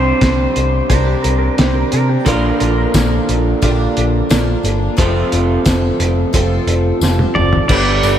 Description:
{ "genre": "folk rock and heartland rock", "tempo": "88 BPM", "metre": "4/4", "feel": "straight", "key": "unclear", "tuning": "A4 = 439 Hz", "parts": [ { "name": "pedal steel guitar", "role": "melody", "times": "0.0-0.9, 7.3-8.2 s", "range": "C5 to D5", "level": "-21 LUFS", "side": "right 1 dB", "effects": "none" }, { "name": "picked twelve-string acoustic guitar", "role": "accompaniment", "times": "0.0-8.2 s", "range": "G2 to B4", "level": "-23 LUFS", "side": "left 4 dB", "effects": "wide subtle chorus" }, { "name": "warm grand piano", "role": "accompaniment", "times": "0.0-8.2 s", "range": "C4 to C5", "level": "-25 LUFS", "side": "right 4 dB", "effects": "analog chorus" }, { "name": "electric guitar through a small old amp", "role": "riff", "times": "0.0-8.2 s", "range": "F2 to G4", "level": "-18 LUFS", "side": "right 2 dB", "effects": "none" }, { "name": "picked electric bass", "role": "bass", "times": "0.0-8.2 s", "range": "F1 to C3", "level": "-17 LUFS", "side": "left 1 dB", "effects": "none" }, { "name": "cloth-damped thuddy drum kit", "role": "drums", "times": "0.2-8.2 s", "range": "crash cymbal, hi-hat, kick drum, ride cymbal, snare drum, toms", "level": "-18 LUFS", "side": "equal", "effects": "none" }, { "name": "clean lap steel guitar", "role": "second line", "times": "0.9-2.9 s", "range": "G4 to Bb4", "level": "-25 LUFS", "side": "right 3 dB", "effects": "wide subtle chorus, ping-pong delay" }, { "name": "tambourine", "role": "percussion", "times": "2.9-8.2 s", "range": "none", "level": "-32 LUFS", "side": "left 9 dB", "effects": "none" } ], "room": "moderate cathedral reverb, RT60 6.0 s", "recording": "dreamy mix soaked in reverb", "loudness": "-12 LUFS", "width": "side -10 dB against mid", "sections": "0.0-7.7 A section", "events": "drum fill 7.0-7.7", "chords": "0.0 Csus2; 2.3 Bb; 5.0 F", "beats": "0.22 0.90 1.58 | 2.26 2.94 3.62 4.30 | 4.98 5.66 6.34 7.02 | 7.70" }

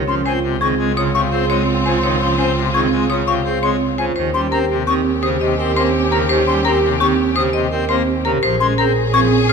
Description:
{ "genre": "classical, minimalist pattern music", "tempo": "169 BPM", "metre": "6/4", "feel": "straight", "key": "unclear", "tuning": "A4 = 440 Hz", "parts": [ { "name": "marimba with hard mallets", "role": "melody", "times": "0.0-9.5 s", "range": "G4 to F5", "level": "-22 LUFS", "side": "left 8 dB", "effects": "none" }, { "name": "dark clarinet", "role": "second line", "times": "0.0-9.5 s", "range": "F4 to Ab4", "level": "-25 LUFS", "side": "right 3 dB", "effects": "none" }, { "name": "pipe organ, full organ", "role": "accompaniment", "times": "0.0-9.5 s", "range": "C3 to C4", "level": "-24 LUFS", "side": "left 1 dB", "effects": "none" }, { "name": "rich symphonic string section", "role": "sustained chords", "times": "0.0-9.5 s", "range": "C4 to Ab4", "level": "-25 LUFS", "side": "left 3 dB", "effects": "none" }, { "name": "rich double bass", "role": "bass", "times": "0.0-9.5 s", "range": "Bb1 to Eb2", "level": "-22 LUFS", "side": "right 3 dB", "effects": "none" }, { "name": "bright silver concert flute", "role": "arpeggios", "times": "0.1-9.5 s", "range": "Ab5 to F6", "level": "-22 LUFS", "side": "left 5 dB", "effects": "none" }, { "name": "vibraphone with soft mallets", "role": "arpeggios", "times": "0.1-9.5 s", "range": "C4 to Bb4", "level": "-21 LUFS", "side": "right 7 dB", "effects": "none" } ], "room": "moderate recital hall reverb, RT60 1.6 s", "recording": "close, detailed microphones", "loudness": "-14 LUFS", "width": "side -5 dB against mid", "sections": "0.0-9.5 A section", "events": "none", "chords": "0.0 Dbmaj7; 4.2 Eb7; 8.4 Bbm7", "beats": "0.26 0.61 0.96 1.32 1.68 | 2.03 2.38 2.74 3.10 3.45 3.81 | 4.16 4.52 4.87 5.23 5.58 5.94 | 6.29 6.65 7.00 7.36 7.71 8.07 | 8.42 8.78 9.13 9.49" }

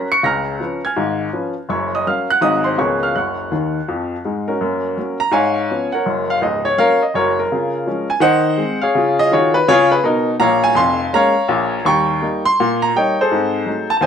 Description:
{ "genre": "jazz, stride piano", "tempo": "165 BPM", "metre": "4/4", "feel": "swing 64% on 8ths", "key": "F# major", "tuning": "A4 = 440 Hz", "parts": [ { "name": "clear upright piano", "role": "solo", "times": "0.0-14.1 s", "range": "C#1 to C#7", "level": "-15 LUFS", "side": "equal", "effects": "none" } ], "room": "moderate club reverb, RT60 0.6 s", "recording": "none", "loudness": "-15 LUFS", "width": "side -8 dB against mid", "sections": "0.0-4.6 A section; 4.6-14.1 B section", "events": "upright piano fill 3.5-4.6", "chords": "0.2 C#7; 1.7 F#; 2.4 G#7; 2.8 C#6; 3.1 F#5; 4.6 F#; 5.3 C#7/G#; 6.0 F#; 7.5 C#; 8.2 G#7/D#; 9.0 C#; 10.4 Bbm7; 11.9 Eb7; 13.3 Ab7b9", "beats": "| 0.23 0.59 0.96 1.32 | 1.69 2.05 2.41 2.78 | 3.14 3.50 3.87 4.23 | 4.59 4.96 5.32 5.69 | 6.05 6.41 6.78 7.14 | 7.50 7.87 8.23 8.59 | 8.95 9.32 9.68 10.04 | 10.40 10.77 11.13 11.49 | 11.86 12.22 12.58 12.94 | 13.30 13.67 14.03" }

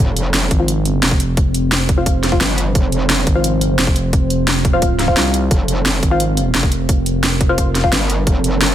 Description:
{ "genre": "dark technical drum and bass", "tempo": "174 BPM", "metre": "4/4", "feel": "straight", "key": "F minor", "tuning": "A4 = 440 Hz", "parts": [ { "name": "deep dark ambient pad", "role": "sustained chords", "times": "0.0-8.7 s", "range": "F3 to C5", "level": "-22 LUFS", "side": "right 2 dB", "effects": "chorus, built-in reverb, sidechain pumping" }, { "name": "filtered dub chord stab", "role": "stabs", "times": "0.0-7.9 s", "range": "F4 to F5", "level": "-22 LUFS", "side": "left 2 dB", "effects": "chorus, dub echo" }, { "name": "metallic wobble bass", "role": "bass", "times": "0.0-3.3, 5.5-8.7 s", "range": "F1 to G1", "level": "-18 LUFS", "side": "equal", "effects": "distortion, chorus, overdrive" }, { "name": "drum and bass drum kit", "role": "drums", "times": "0.2-8.7 s", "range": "hi-hat, snare drum", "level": "-18 LUFS", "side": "equal", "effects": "overdrive" }, { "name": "growling FM bass", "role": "bass", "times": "0.5-7.9 s", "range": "F1 to C2", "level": "-18 LUFS", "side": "equal", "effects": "none" }, { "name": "electronic kick drum", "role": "drums", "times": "0.5-8.3 s", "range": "none", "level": "-16 LUFS", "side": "equal", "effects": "overdrive" } ], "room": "digital ambience", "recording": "none", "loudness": "-13 LUFS", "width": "side -11 dB against mid", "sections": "0.0-8.7 A section", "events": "filter sweep on synth stab 0.0-8.7", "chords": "0.0 F5", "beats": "0.34 0.68 1.03 | 1.37 1.72 2.06 2.41 | 2.75 3.10 3.44 3.79 | 4.13 4.48 4.82 5.17 | 5.51 5.86 6.20 6.54 | 6.89 7.23 7.58 7.92 | 8.27 8.61" }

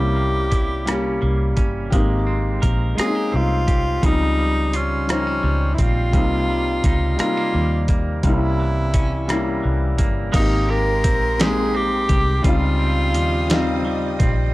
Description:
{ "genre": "slow six-eight R&B", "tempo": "57 BPM (dotted quarters)", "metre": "6/8", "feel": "straight", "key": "Ab major", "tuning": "A4 = 440 Hz", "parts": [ { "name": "breathy tenor saxophone", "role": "melody", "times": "0.0-14.2 s", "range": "Db4 to Bb4", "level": "-23 LUFS", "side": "equal", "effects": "none" }, { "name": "clean electric guitar", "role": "second line", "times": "0.0-14.5 s", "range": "C3 to Bb4", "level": "-29 LUFS", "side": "right 3 dB", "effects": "tremolo" }, { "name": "clear concert grand piano", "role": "accompaniment", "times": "0.0-14.5 s", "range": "F3 to C5", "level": "-24 LUFS", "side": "left 2 dB", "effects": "none" }, { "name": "vintage muted fingered electric bass", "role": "bass", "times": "0.0-14.5 s", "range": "G1 to Eb2", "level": "-22 LUFS", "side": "equal", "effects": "transformer saturation" }, { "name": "dusty soul sampler-style drum kit", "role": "drums", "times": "0.5-14.4 s", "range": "crash cymbal, hi-hat, kick drum, rim click, snare drum", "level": "-20 LUFS", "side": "equal", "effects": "none" }, { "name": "warm studio string section", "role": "sustained chords", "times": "10.3-14.5 s", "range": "Bb4 to Eb6", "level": "-33 LUFS", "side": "equal", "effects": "none" } ], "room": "digital ambience", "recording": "dry, gritty hardware recording", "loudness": "-17 LUFS", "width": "side -18 dB against mid", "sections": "0.0-10.3 A section; 10.3-14.5 B section", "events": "none", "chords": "0.0 C7b9; 1.9 Abmaj9; 4.0 Dbmaj9#11; 6.1 Cm7; 8.2 C7b9; 10.3 Abmaj9; 12.4 Dbmaj9#11", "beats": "0.87 | 1.92 2.98 | 4.03 5.08 | 6.13 7.19 | 8.24 9.29 | 10.34 11.40 | 12.45 13.50" }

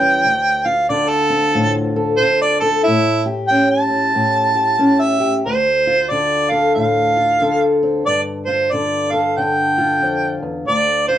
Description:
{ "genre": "acoustic country blues, solo or duo", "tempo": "92 BPM", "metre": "4/4", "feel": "swing 61% on 8ths", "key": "D minor", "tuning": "A4 = 440 Hz", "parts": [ { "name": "mellow harmonica", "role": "melody", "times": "0.0-11.2 s", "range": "E4 to A5", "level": "-15 LUFS", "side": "right 1 dB", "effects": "none" }, { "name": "fingerpicked old ladder-braced acoustic guitar", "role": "accompaniment", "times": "0.0-11.2 s", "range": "D2 to A4", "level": "-19 LUFS", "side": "left 2 dB", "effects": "none" } ], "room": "moderate studio reverb, RT60 0.5 s", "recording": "dark, warm production", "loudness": "-14 LUFS", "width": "side -11 dB against mid", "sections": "0.0-5.4 A section; 5.4-11.2 B section", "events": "harmonica solo 0.0-5.4", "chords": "0.3 Dm7; 2.9 A7; 5.4 Dm7; 8.1 Gsus2; 10.7 Dm7", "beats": "| 0.26 0.91 1.55 2.20 | 2.85 3.50 4.15 4.80 | 5.45 6.10 6.75 7.40 | 8.06 8.71 9.37 10.02 | 10.68" }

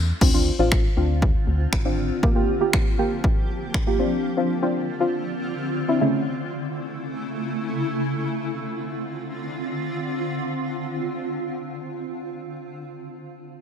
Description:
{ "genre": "dance-pop", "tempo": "119 BPM", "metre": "4/4", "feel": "straight", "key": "D minor", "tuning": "A4 = 440 Hz", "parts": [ { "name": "organ-like FM bass", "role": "bass", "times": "0.0-2.1 s", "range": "G#1 to E2", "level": "-23 LUFS", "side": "equal", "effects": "sidechain pumping" }, { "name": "deep mellow chord stab", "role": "accompaniment", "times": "0.2-6.2 s", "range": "C#3 to G4", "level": "-23 LUFS", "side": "equal", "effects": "chorus, sidechain pumping" }, { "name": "granular cloud pad", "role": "sustained chords", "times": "1.0-12.5 s", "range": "C#3 to G4", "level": "-28 LUFS", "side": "equal", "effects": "built-in reverb, sidechain pumping" }, { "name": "house drum kit", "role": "drums", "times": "0.2-3.9 s", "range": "crash cymbal, finger snaps, kick drum", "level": "-21 LUFS", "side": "equal", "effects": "none" } ], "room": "light reverb", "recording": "none", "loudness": "-22 LUFS", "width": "side -8 dB against mid", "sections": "0.2-8.3 A section; 8.3-12.3 B section", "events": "break 0.0", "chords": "0.2 Dm7; 2.2 Gm7; 4.0 Dm7; 6.0 A/C#; 8.3 Dm7", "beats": "| 0.21 0.72 1.22 1.73 | 2.23 2.73 3.24 3.74 | 4.25 4.75 5.25 5.76 | 6.26 6.77 7.27 7.78 | 8.28 8.79 9.29 9.79 | 10.30 10.80 11.31 11.81" }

